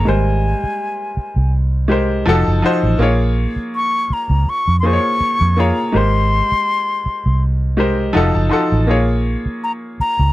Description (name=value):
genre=lush 1970s-style soul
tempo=82 BPM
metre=4/4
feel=swing 54% on 16ths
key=Bb dorian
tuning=A4 = 440 Hz
part: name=mellow silver concert flute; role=melody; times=0.0-10.3 s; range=Ab5 to Db6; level=-19 LUFS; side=left 2 dB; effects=none
part: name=clear baby grand piano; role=accompaniment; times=0.0-10.3 s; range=F3 to C6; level=-18 LUFS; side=left 1 dB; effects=none
part: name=vintage muted fingered electric bass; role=bass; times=0.0-10.3 s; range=F1 to F2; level=-16 LUFS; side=equal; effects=none
room=little or no reverb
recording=dry, close 1970s-style studio recording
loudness=-14 LUFS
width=side -16 dB against mid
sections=0.0-10.3 A section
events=grand piano fill 7.4-8.9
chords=0.1 Abmaj9; 2.3 F7b9; 3.0 Bbm7; 5.9 Abmaj9; 8.2 F7b9; 8.9 Bbm7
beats=| 0.07 0.80 1.54 2.27 | 3.01 3.74 4.48 5.21 | 5.95 6.68 7.42 8.15 | 8.89 9.63